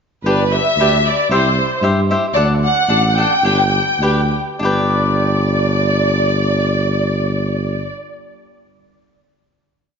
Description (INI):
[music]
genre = mexican folk, mariachi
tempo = 94-115 BPM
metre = 2/4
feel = swing 54% on 8ths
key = G major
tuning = A4 = 439 Hz
[part]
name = dark symphonic violin section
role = melody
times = 0.2-7.9 s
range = B4 to G5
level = -17 LUFS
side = equal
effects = slapback echo
[part]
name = dark tuba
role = bass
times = 0.2-7.9 s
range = G1 to G2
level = -18 LUFS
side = equal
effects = none
[part]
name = cavaquinho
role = accompaniment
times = 0.3-8.7 s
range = D4 to G5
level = -20 LUFS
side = left 2 dB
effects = none
[sound]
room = moderate concert hall reverb, RT60 2.2 s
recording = nothing above 7.5 kHz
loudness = -13 LUFS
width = side -6 dB against mid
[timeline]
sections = 0.2-4.6 A section; 4.6-7.1 final chord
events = slowing down 2.3-4.6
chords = 0.2 G; 1.3 C; 2.3 D; 3.4 G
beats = | 0.25 0.78 | 1.30 1.83 | 2.35 2.88 | 3.42 3.99 | 4.61 5.25 | 5.88 6.51